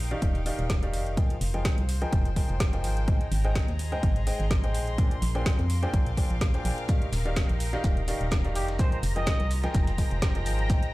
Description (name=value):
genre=piano house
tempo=126 BPM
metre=4/4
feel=swing 54% on 16ths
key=unclear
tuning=A4 = 440 Hz
part: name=organ-like FM bass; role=bass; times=0.0-10.7 s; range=Eb1 to F2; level=-28 LUFS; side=equal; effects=sidechain pumping
part: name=rich chamber string section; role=texture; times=0.0-10.9 s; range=Eb4 to D6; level=-40 LUFS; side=left 2 dB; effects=sidechain pumping
part: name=bright upright piano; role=riff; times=0.1-10.9 s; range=Bb2 to G5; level=-34 LUFS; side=equal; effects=sidechain pumping, low-pass filter, tape echo
part: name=garage drum kit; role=drums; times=0.1-10.9 s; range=hi-hat, snare drum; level=-36 LUFS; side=equal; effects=none
part: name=electronic kick drum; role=drums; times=0.2-10.8 s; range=none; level=-25 LUFS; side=equal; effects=overdrive
part: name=analog string pad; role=sustained chords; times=6.9-10.9 s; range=Bb5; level=-40 LUFS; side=right 1 dB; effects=ensemble chorus, sidechain pumping
part: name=dusty soul sampler-style drum kit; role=drums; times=6.9-10.8 s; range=hi-hat, shaker, snare drum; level=-43 LUFS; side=equal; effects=none
part: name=warm trumpet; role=melody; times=8.6-9.5 s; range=G4 to Eb5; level=-36 LUFS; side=equal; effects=vintage 12-bit sampler grit, tape echo
room=digital ambience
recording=played on a big sound system in a bare room, large studio reverb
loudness=-24 LUFS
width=side -19 dB against mid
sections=0.0-10.9 A section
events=none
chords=0.0 Ebmaj9; 1.2 Fm11; 3.1 Abmaj7; 5.0 Bb13; 6.9 Ebmaj9; 8.8 Fm11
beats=0.22 0.70 | 1.17 1.65 2.13 2.60 | 3.08 3.56 4.03 4.51 | 4.98 5.46 5.94 6.41 | 6.89 7.36 7.84 8.32 | 8.79 9.27 9.74 10.22 | 10.70